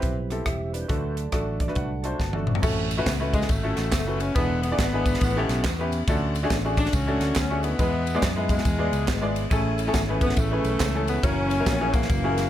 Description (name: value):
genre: uptempo gospel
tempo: 139 BPM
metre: 4/4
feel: swing 63% on 8ths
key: A major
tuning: A4 = 440 Hz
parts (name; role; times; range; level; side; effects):
- clear baby grand piano; accompaniment; 0.0-12.5 s; A2 to A5; -28 LUFS; left 1 dB; none
- percussive tonewheel organ; sustained chords; 0.0-2.9, 9.5-12.5 s; E3 to A5; -32 LUFS; right 3 dB; fast rotary speaker, overdrive, chorus vibrato
- fingered electric bass; bass; 0.0-12.5 s; E1 to F#2; -28 LUFS; equal; none
- crisp fusion drum kit; drums; 0.0-12.4 s; crash cymbal, hi-hat, kick drum, ride cymbal, rim click, snare drum, toms; -26 LUFS; equal; none
- tambourine and handclaps; percussion; 2.6-12.4 s; none; -39 LUFS; right 8 dB; none
- warm saxophone section; melody; 3.3-12.5 s; B2 to D4; -28 LUFS; left 2 dB; tape echo
room: light reverb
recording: none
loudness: -22 LUFS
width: side -12 dB against mid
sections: 0.0-2.6 A section; 2.6-12.5 B section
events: grand piano fill 1.3-2.6; tonewheel organ fill 1.8-2.6; drum fill 2.2-2.6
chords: 0.0 Cmaj7; 0.9 D; 2.6 A6; 4.4 E7; 5.2 A9; 6.1 Dmaj7; 7.8 E; 9.5 Amaj7; 11.2 F#7